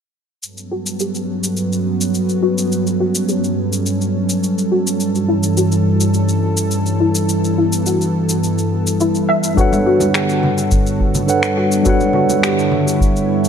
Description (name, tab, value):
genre	sunset chillout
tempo	105 BPM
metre	4/4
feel	straight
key	G lydian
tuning	A4 = 442 Hz
part	lush unison pad	sustained chords	0.4-13.5 s	G2 to C#5	-17 LUFS	right 1 dB	chorus
part	electronic shaker and finger snaps	drums	0.4-13.5 s	none	-23 LUFS	left 2 dB	none
part	soft round pluck	arpeggios	0.7-12.6 s	E4 to E5	-21 LUFS	left 2 dB	ensemble chorus, tape echo
part	mellow tine electric piano	accompaniment	9.5-13.5 s	G3 to F#5	-16 LUFS	moving between left 3 dB and right 4 dB	auto-pan, tape echo
part	electronic kick drum	drums	9.6-13.1 s	none	-16 LUFS	equal	none
part	congas	percussion	9.7-12.8 s	none	-23 LUFS	right 1 dB	none
room	moderate lush hall reverb, RT60 2.5 s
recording	dark, warm production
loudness	-14 LUFS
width	side -7 dB against mid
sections	0.4-13.5 A section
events	filter sweep on synth pluck 0.4-13.5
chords	0.4 Gmaj9#11; 5.0 F#m7/G; 9.6 Gmaj9#11